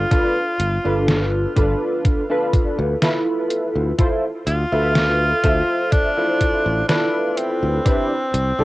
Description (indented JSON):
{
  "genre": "vaporwave",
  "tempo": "62 BPM",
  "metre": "4/4",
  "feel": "straight",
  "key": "D dorian",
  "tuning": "A4 = 440 Hz",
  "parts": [
    { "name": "bright tenor saxophone", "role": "melody", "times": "0.0-8.6 s", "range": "C4 to F4", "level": "-22 LUFS", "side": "equal", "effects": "tape echo" },
    { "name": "warbly lo-fi synth keys", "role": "accompaniment", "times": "0.0-8.6 s", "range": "D4 to E5", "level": "-21 LUFS", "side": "equal", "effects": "ensemble chorus, vintage 12-bit sampler grit, tape echo" },
    { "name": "modern bright fingered electric bass", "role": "bass", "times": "0.0-8.6 s", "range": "G1 to D2", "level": "-21 LUFS", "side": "equal", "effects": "none" },
    { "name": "detuned 8-bit digital drum machine", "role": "drums", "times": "0.1-8.5 s", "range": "hi-hat, snare drum", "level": "-22 LUFS", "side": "equal", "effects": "cassette tape" },
    { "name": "electronic kick drum", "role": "drums", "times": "0.1-8.1 s", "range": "none", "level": "-18 LUFS", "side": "equal", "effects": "cassette tape" }
  ],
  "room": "moderate booth ambience, RT60 0.2 s",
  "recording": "home recording on cassette",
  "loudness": "-17 LUFS",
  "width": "side -18 dB against mid",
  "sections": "0.0-8.6 A section",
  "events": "none",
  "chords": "0.0 G9; 3.5 Dm7; 7.9 Cmaj7"
}